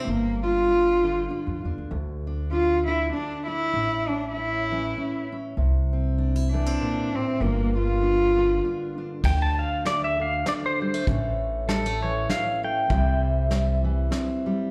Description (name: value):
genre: acoustic folk duo or small band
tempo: 98 BPM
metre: 3/4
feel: swing 57% on 8ths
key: D minor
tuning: A4 = 441 Hz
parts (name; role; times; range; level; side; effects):
- warm cello; melody; 0.0-8.9 s; Bb3 to F4; -26 LUFS; equal; slapback echo
- fingerpicked steel-string acoustic guitar; accompaniment; 0.0-14.7 s; D2 to F4; -32 LUFS; equal; slapback echo
- upright bass; bass; 0.1-14.1 s; G1 to F2; -29 LUFS; equal; none
- soft brush drum kit; drums; 9.2-14.3 s; crash cymbal, hi-hat, kick drum, snare drum; -32 LUFS; equal; none
- pedal steel guitar; second line; 9.3-13.2 s; A4 to A5; -29 LUFS; equal; slapback echo
room: moderate plate reverb, RT60 1.5 s, studio ambience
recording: live gig heard through the venue's PA, club reverb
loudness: -25 LUFS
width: mono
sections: 0.0-9.2 A section; 9.2-14.7 B section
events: pedal steel guitar solo 9.2-14.7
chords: 0.1 G5; 1.9 Dsus2; 3.7 A; 5.6 C; 7.4 Gm7; 9.2 D5; 11.1 A; 12.9 C